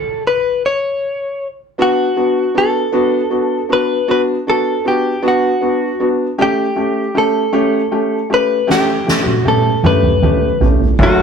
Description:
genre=six-eight pop ballad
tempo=52 BPM (dotted quarters)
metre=6/8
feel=straight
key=unclear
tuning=A4 = 440 Hz
part: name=direct-recorded clean electric guitar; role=melody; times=0.0-11.2 s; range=F#4 to C#5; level=-16 LUFS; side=left 1 dB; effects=none
part: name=felt-muted upright piano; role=accompaniment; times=1.8-11.2 s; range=A3 to G4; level=-16 LUFS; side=equal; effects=none
part: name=soft-mallet drum kit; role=drums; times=8.7-11.2 s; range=kick drum, ride cymbal, snare drum, toms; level=-14 LUFS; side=right 1 dB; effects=none
part: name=warm studio string section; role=sustained chords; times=11.0-11.2 s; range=A4 to D6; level=-32 LUFS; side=right 4 dB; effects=none
part: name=clear baby grand piano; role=bass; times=11.0-11.2 s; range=F#1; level=-14 LUFS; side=equal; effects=none
room=moderate studio reverb, RT60 0.6 s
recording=rough rehearsal-room recording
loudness=-13 LUFS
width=side -6 dB against mid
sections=0.0-1.8 A section; 1.8-11.2 A section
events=stop 0.0-1.8; drum fill 8.7-11.0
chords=0.0 N.C.; 1.8 Bm; 6.4 A7

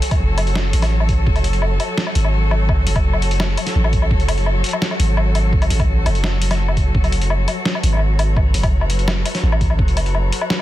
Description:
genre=half-time drum and bass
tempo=169 BPM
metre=4/4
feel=half-time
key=F# minor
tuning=A4 = 437 Hz
part: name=warm studio cello section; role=sustained chords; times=0.0-10.6 s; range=F#3 to C#5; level=-25 LUFS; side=left 3 dB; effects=sidechain pumping
part: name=boom bap sampler-style drum kit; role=drums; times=0.0-10.6 s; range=hi-hat, snare drum, woodblock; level=-23 LUFS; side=left 1 dB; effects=none
part: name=metallic inharmonic drone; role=texture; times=0.0-10.6 s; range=A4 to B4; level=-31 LUFS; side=right 1 dB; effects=chorus, built-in reverb, phaser
part: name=electronic kick drum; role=drums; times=0.1-9.9 s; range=none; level=-18 LUFS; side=equal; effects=none
part: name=long sustained 808-style bass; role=bass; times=0.2-10.3 s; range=F#1 to A1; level=-17 LUFS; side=equal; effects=tube saturation
room=little or no reverb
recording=dense, heavily limited modern master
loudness=-15 LUFS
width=side -14 dB against mid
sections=0.0-10.6 A section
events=none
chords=0.0 F#m

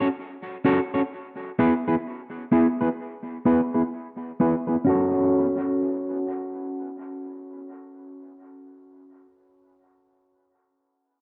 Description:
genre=reggae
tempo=64 BPM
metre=4/4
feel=swing 60% on 16ths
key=F# minor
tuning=A4 = 440 Hz
part: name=electric guitar at the edge of break-up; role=accompaniment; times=0.0-9.3 s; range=B3 to C#5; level=-25 LUFS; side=equal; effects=tremolo, low-pass filter, dub echo
room=moderate spring reverb, RT60 1.5 s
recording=dark, warm production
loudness=-24 LUFS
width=mono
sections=0.0-4.9 A section; 4.9-8.6 B section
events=filter sweep on clean electric guitar 0.0-4.9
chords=0.0 F#m; 1.1 E; 4.9 F#m

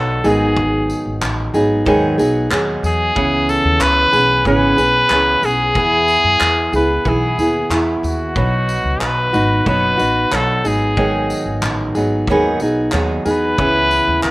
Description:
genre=acoustic pop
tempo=92 BPM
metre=4/4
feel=straight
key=unclear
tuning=A4 = 440 Hz
part: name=clear trumpet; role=melody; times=0.0-14.3 s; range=F#4 to B4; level=-16 LUFS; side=equal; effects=none
part: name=fingerpicked steel-string acoustic guitar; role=accompaniment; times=0.0-14.3 s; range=G#2 to G#4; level=-17 LUFS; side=right 1 dB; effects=slapback echo
part: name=upright bass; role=bass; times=0.0-14.3 s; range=F#1 to F#2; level=-21 LUFS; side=equal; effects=none
part: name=loose indie drum kit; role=drums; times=0.2-14.3 s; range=handclaps, kick drum, tambourine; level=-24 LUFS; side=equal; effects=none
room=little or no reverb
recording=none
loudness=-13 LUFS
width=side -20 dB against mid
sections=0.0-14.3 A section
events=none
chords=0.2 G#m7; 3.2 C#m7; 5.8 E; 8.4 B; 10.6 G#m7; 13.6 C#m7

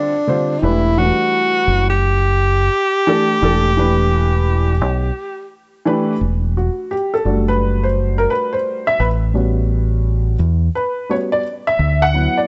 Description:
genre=hip hop, jazz-hop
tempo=86 BPM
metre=4/4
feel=swing 64% on 16ths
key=E minor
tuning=A4 = 440 Hz
part: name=breathy tenor saxophone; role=melody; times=0.0-5.5 s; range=D4 to G4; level=-19 LUFS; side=equal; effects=none
part: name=dark upright piano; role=accompaniment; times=0.0-12.5 s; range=D3 to F#5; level=-21 LUFS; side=equal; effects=none
part: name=deep dub fingered electric bass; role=bass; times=0.6-12.3 s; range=E1 to E2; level=-19 LUFS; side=equal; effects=none
room=light reverb, small room reverb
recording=nothing above 7.9 kHz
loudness=-17 LUFS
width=mono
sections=0.0-6.2 A section; 6.2-12.5 B section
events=upright piano solo 6.2-12.5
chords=0.0 Fadd9; 0.6 Em7; 6.2 Em11; 9.0 A13; 11.8 D69

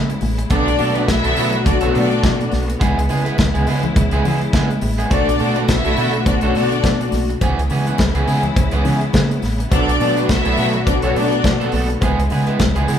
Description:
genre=disco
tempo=104 BPM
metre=4/4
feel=swing 56% on 16ths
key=B dorian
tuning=A4 = 440 Hz
part: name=clear studio string section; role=sustained chords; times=0.0-13.0 s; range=C#3 to F#4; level=-23 LUFS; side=left 2 dB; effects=none
part: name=deep dub fingered electric bass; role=bass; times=0.0-13.0 s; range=A1 to C#3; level=-20 LUFS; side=right 1 dB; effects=none
part: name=electric guitar at the edge of break-up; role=accompaniment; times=0.1-13.0 s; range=E3 to B4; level=-23 LUFS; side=right 3 dB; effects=spring reverb
part: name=modern studio drum kit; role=drums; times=0.1-13.0 s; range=hi-hat, kick drum, snare drum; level=-20 LUFS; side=equal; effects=none
part: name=congas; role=percussion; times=0.1-12.7 s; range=none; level=-28 LUFS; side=left 2 dB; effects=none
part: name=clear studio string section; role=second line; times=0.5-11.7 s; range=C#4 to E5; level=-20 LUFS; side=left 2 dB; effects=none
part: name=cowbell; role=percussion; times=5.1-12.7 s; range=none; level=-32 LUFS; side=left 7 dB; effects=none
room=moderate large studio reverb, RT60 0.9 s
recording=band playing live in one room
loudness=-15 LUFS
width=side -9 dB against mid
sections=0.0-13.0 A section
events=none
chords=0.0 C#m7; 0.5 Bm7; 2.8 C#m7; 5.1 Bm7; 7.4 C#m7; 9.7 Bm7; 12.0 C#m7

